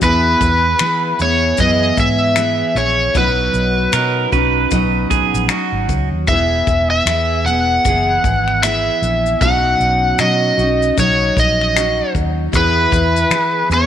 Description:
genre	acoustic pop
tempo	77 BPM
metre	4/4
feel	swing 60% on 16ths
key	unclear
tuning	A4 = 440 Hz
part	overdriven slide guitar	melody	0.0-13.9 s	B4 to F#5	-16 LUFS	equal	none
part	picked steel-string acoustic guitar	accompaniment	0.0-13.9 s	B2 to G#4	-20 LUFS	equal	double-tracked left and right
part	vintage muted fingered electric bass	bass	0.0-13.9 s	E1 to E3	-20 LUFS	equal	none
part	soft brush drum kit	drums	0.0-13.9 s	finger snaps, kick drum, shaker	-21 LUFS	left 2 dB	none
part	pedal steel guitar	second line	3.9-6.1 s	F#4 to B4	-19 LUFS	right 10 dB	none
room	light reverb, small room ambience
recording	1960s-style stereo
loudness	-13 LUFS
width	side -10 dB against mid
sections	0.0-13.9 A section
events	none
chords	0.0 E; 3.2 Badd9; 6.3 E; 9.4 Badd9; 12.5 E

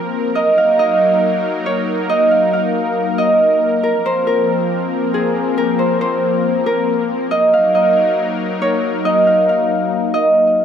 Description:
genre	hip hop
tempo	138 BPM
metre	4/4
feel	half-time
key	unclear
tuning	A4 = 442 Hz
part	Celtic harp	melody	0.0-10.6 s	Ab4 to F5	-14 LUFS	right 1 dB	ping-pong delay
part	warm analog pad	sustained chords	0.0-10.6 s	F3 to Bb4	-19 LUFS	left 3 dB	chorus
room	light reverb, small room ambience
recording	none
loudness	-13 LUFS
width	side -8 dB against mid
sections	0.0-10.6 A section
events	none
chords	0.4 Ebm; 3.8 Bbsus2; 7.3 Ebm

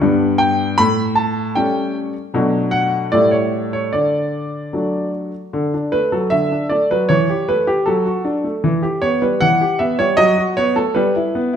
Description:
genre	classical-period piano sonatina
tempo	77 BPM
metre	2/4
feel	straight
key	D major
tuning	A4 = 441 Hz
part	clear baby grand piano	solo	0.0-11.6 s	G2 to B5	-15 LUFS	equal	none
room	moderate recital hall reverb, RT60 1.5 s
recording	none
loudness	-15 LUFS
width	side -8 dB against mid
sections	0.0-5.5 A section; 5.5-11.6 B section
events	none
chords	0.0 G; 0.8 A7; 2.3 Bm7; 3.1 A7; 3.9 D; 7.1 A7/E; 7.9 D/F#; 8.6 Em; 10.2 B7/F#; 10.9 Em/G

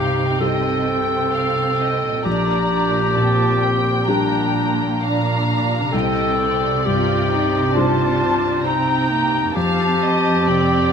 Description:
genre	cinematic, emotional film score for orchestra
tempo	66 BPM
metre	4/4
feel	rubato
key	C dorian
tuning	A4 = 440 Hz
part	muted studio violin section	melody	0.0-10.9 s	G5 to Bb5	-25 LUFS	left 2 dB	none
part	clear clarinet	second line	0.0-10.9 s	D4 to A4	-21 LUFS	left 1 dB	none
part	muted studio violin section	second line	0.0-10.9 s	C5 to G5	-26 LUFS	left 1 dB	none
part	dark baby grand piano	accompaniment	0.0-10.9 s	Bb1 to G4	-24 LUFS	left 3 dB	none
part	muted symphonic viola section	accompaniment	0.0-10.9 s	Bb3 to F4	-26 LUFS	right 2 dB	none
part	muted studio cello section	bass	0.0-10.9 s	F2 to C3	-24 LUFS	right 4 dB	none
room	moderate scoring stage reverb, RT60 2.0 s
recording	none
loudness	-16 LUFS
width	side -7 dB against mid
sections	0.0-10.9 A section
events	none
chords	0.0 Cm; 2.3 Gm/Bb; 5.9 Cm; 9.6 Fadd9

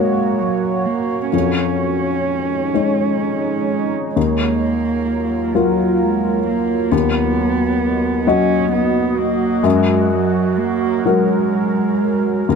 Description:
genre	neoclassical piano and strings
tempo	43 BPM (dotted quarters)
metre	6/8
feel	rubato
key	unclear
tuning	A4 = 440 Hz
part	dark cello	second line	0.0-12.6 s	Gb3 to Db4	-20 LUFS	right 6 dB	none
part	warm upright piano	accompaniment	0.0-12.6 s	Eb2 to D#5	-18 LUFS	left 6 dB	none
part	deep dark ambient pad	sustained chords	0.0-12.6 s	Gb3 to D#5	-22 LUFS	right 4 dB	chorus, built-in reverb
room	light reverb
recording	none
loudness	-15 LUFS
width	side -5 dB against mid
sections	0.0-12.6 A section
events	none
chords	0.0 Gb; 1.3 Dbadd9/F; 4.2 Ebmadd9; 6.9 B/D#; 9.6 Gb

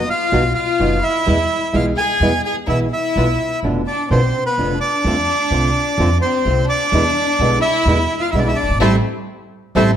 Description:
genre	tango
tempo	127 BPM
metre	4/4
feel	rubato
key	unclear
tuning	A4 = 435 Hz
part	bandoneon	melody	0.0-9.9 s	A4 to G#5	-19 LUFS	right 1 dB	none
part	warm chamber violin section	second line	0.0-9.9 s	A3 to G#4	-21 LUFS	left 3 dB	none
part	nylon-string guitar	accompaniment	0.0-9.9 s	B2 to F#4	-21 LUFS	right 2 dB	none
part	upright bass	bass	0.0-9.9 s	F1 to F2	-20 LUFS	equal	none
room	moderate recital hall reverb, RT60 1.4 s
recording	none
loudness	-14 LUFS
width	side -9 dB against mid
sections	0.0-10.0 A section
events	band accent 8.8-10.0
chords	0.0 B; 1.3 E; 3.2 Bdim; 5.0 F6; 6.9 E7; 8.8 Am7

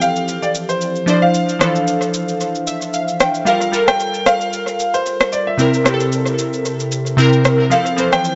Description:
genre	amapiano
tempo	113 BPM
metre	4/4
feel	swing 55% on 16ths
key	G dorian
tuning	A4 = 440 Hz
part	clear concert grand piano	melody	0.0-8.3 s	C5 to G5	-22 LUFS	equal	tape echo
part	glassy digital keys	accompaniment	0.0-8.3 s	C3 to G5	-19 LUFS	equal	chorus, tape echo
part	electronic shaker and rim click	drums	0.0-8.3 s	none	-23 LUFS	equal	overdrive, tape echo
room	light reverb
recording	echo-heavy mix, nothing above 7.8 kHz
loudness	-17 LUFS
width	mono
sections	0.0-8.3 A section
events	synth keys fill 2.4-3.5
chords	0.0 Fmaj7; 1.1 Dm7; 3.5 Gm9; 5.6 C7; 7.7 Fmaj7

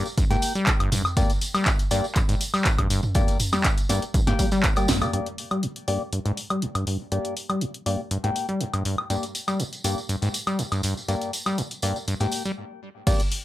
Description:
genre	acid house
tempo	121 BPM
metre	4/4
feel	straight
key	G phrygian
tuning	A4 = 435 Hz
part	acid bass, saw	riff	0.0-13.1 s	G1 to G3	-27 LUFS	equal	sidechain pumping, tape echo
part	percussive organ stab	stabs	0.0-13.2 s	Bb3 to G5	-30 LUFS	left 2 dB	chorus, tape echo
part	tambourine	percussion	0.1-5.1, 9.1-13.3 s	none	-34 LUFS	right 2 dB	none
part	electronic kick drum	drums	0.2-4.7, 13.1-13.2 s	none	-23 LUFS	equal	none
part	punchy analog drum machine	drums	0.2-13.4 s	crash cymbal, handclaps, hi-hat, snare drum, toms, woodblock	-27 LUFS	equal	overdrive
room	light reverb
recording	dry, gritty hardware recording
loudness	-22 LUFS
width	side -15 dB against mid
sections	0.0-5.1 A section; 5.1-13.1 B section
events	drop 0.0-5.1; drum fill 4.9; band accent 4.9; stop 12.6-13.1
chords	0.0 Gm

